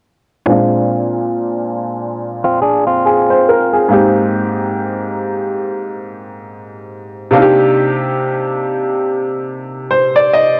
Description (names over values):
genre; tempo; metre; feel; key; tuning
R&B; 70 BPM; 4/4; swing 58% on 16ths; unclear; A4 = 440 Hz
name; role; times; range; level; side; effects
bright baby grand piano; accompaniment; 0.5-10.6 s; Ab2 to Eb5; -16 LUFS; equal; low-pass filter
direct-recorded clean electric guitar; arpeggios; 2.4-3.9 s; C4 to Ab4; -17 LUFS; equal; low-pass filter
room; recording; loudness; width
moderate lush hall reverb, RT60 2.4 s; dry, gritty hardware recording, cassette tape; -15 LUFS; mono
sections
0.5-10.6 A section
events
filter sweep 0.5-10.6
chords
0.5 Bb7; 3.9 Abmaj9; 7.3 Cm9